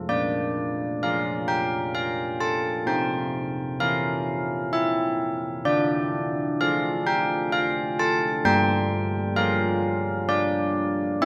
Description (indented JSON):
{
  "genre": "classical, tune for church bells",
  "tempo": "65 BPM",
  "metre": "3/4",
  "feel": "straight",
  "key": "unclear",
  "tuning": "A4 = 442 Hz",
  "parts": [
    { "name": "carillon bells", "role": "solo", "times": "0.0-11.2 s", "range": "G3 to A5", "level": "-25 LUFS", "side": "equal", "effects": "none" }
  ],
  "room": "moderate concert hall reverb, RT60 2.3 s",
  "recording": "close, detailed microphones",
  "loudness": "-25 LUFS",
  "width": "mono",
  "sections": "0.1-11.2 A section",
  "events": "none",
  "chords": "0.1 Bb; 2.9 C7; 5.7 Dm; 8.5 Gm7"
}